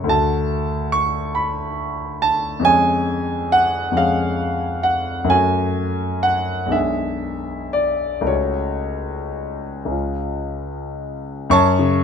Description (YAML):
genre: classical, romantic nocturne for solo piano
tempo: 36-48 BPM (dotted quarters)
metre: 6/8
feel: rubato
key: F# minor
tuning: A4 = 440 Hz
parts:
  - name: warm grand piano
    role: solo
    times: 0.0-12.0 s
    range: B1 to C#6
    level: -18 LUFS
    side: equal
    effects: none
room: light reverb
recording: close, detailed microphones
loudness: -18 LUFS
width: side -7 dB against mid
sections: 0.0-11.5 A section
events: none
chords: 0.1 D; 2.7 C#/E#; 5.3 F#m; 6.7 G#dim/B; 8.3 F#m/C#; 9.9 C#; 11.5 F#m